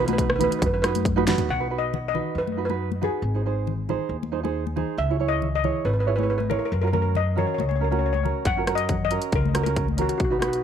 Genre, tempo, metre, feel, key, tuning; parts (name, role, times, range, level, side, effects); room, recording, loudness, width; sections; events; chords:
calypso; 138 BPM; 4/4; straight; B major; A4 = 440 Hz
steel pan; melody; 0.0-10.6 s; F#4 to F#5; -27 LUFS; left 3 dB; tape echo
tenor ukulele; accompaniment; 0.0-10.6 s; C#4 to C#5; -28 LUFS; right 11 dB
upright bass; bass; 0.0-10.6 s; G#1 to F#2; -26 LUFS; equal
dubstep drum kit; drums; 0.1-1.5, 8.5-10.6 s; hi-hat, kick drum, rim click, snare drum, toms; -26 LUFS; equal; overdrive
congas; percussion; 0.1-10.1 s; -31 LUFS; left 11 dB
light reverb, studio reverb; 1960s-style stereo with parts hard left and right; -22 LUFS; side -8 dB against mid
0.0-1.5 A section; 1.5-10.6 B section
drum fill 1.3
0.0 B; 3.2 G#; 5.0 C#m; 6.7 F#